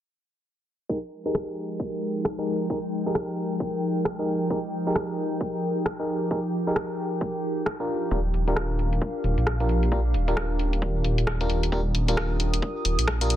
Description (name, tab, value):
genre	UK garage, two-step garage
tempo	133 BPM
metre	4/4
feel	swing 61% on 16ths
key	unclear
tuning	A4 = 439 Hz
part	FM electric piano	stabs	0.9-13.4 s	D4 to Bb4	-29 LUFS	equal	chorus, low-pass filter, tape echo
part	electronic kick drum	drums	0.9-13.2 s	none	-33 LUFS	equal	high-pass filter on kick
part	warbly tape-like pad	texture	1.3-13.4 s	F3 to Eb6	-30 LUFS	equal	chorus, built-in reverb, sidechain pumping
part	garage drum kit	drums	1.3-13.4 s	hi-hat, rim click	-30 LUFS	equal	low-pass filter on snare, low-pass filter on hats
part	dark detuned saw bass	bass	8.1-13.4 s	Eb1 to Bb1	-24 LUFS	equal	none
room	digital ambience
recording	dense, heavily limited modern master, low-pass filter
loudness	-24 LUFS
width	side -12 dB against mid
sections	0.9-13.4 A section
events	filter sweep on drum 0.9-13.4; filter sweep on FM electric piano 0.9-13.4; filter sweep 0.9-13.4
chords	0.9 Fm11; 7.9 Ebmaj9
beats	| 0.90 1.35 1.80 2.25 | 2.70 3.15 3.60 4.05 | 4.50 4.96 5.41 5.86 | 6.31 6.76 7.21 7.66 | 8.11 8.56 9.02 9.47 | 9.92 10.37 10.82 11.27 | 11.72 12.17 12.62 13.08